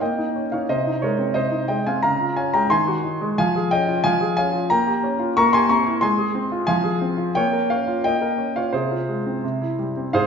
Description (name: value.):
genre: classical-period piano sonatina.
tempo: 89 BPM.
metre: 2/4.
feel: straight.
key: Ab major, F minor from 4.7 s.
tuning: A4 = 443 Hz.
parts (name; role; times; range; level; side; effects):
clear grand piano; solo; 0.0-10.3 s; Ab2 to Db6; -19 LUFS; equal; none.
room: wet recital hall reverb, RT60 1.4 s.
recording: recorded in a church or concert hall, nothing above 7.5 kHz.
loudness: -19 LUFS.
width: side -6 dB against mid.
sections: 0.0-10.1 A section.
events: none.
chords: 0.0 Eb7/Bb; 0.7 Ab/C; 2.0 Db; 2.7 Ab7/Eb; 3.4 Db/F; 4.7 Gm7b5/Bb; 5.4 C7/Bb; 6.0 Fm/Ab; 6.7 Fm; 7.4 Bbm; 8.7 Fm/C; 9.4 C.